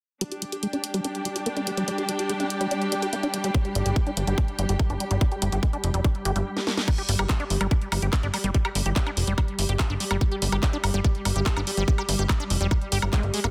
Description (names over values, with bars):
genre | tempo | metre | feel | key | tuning
psychedelic trance | 144 BPM | 4/4 | straight | unclear | A4 = 440 Hz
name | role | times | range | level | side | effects
swarming drone | sustained chords | 0.7-13.5 s | G3 to G4 | -36 LUFS | equal | built-in reverb, sidechain pumping
liquid acid bass | riff | 0.2-13.5 s | G3 to G4 | -34 LUFS | equal | chorus, sidechain pumping, dub echo
garage drum kit | drums | 0.2-13.5 s | crash cymbal, handclaps, hi-hat, snare drum, woodblock | -32 LUFS | equal | none
rich studio string section | texture | 0.2-6.5 s | D4 to G5 | -35 LUFS | equal | sidechain pumping
electronic kick drum | drums | 3.5-13.2 s | none | -25 LUFS | equal | none
plucky analog bass | bass | 3.8-13.5 s | F1 to G1 | -28 LUFS | equal | none
room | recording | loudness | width
light reverb | dense, heavily limited modern master | -25 LUFS | mono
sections
0.2-6.9 A section; 6.9-13.5 B section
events
filter sweep on acid bass 0.2-6.9; drum fill 6.6-6.9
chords
0.2 G5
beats
| 0.21 0.63 1.04 1.46 | 1.88 2.29 2.71 3.13 | 3.54 3.96 4.38 4.79 | 5.21 5.63 6.04 6.46 | 6.88 7.29 7.71 8.13 | 8.54 8.96 9.38 9.79 | 10.21 10.63 11.04 11.46 | 11.88 12.29 12.71 13.13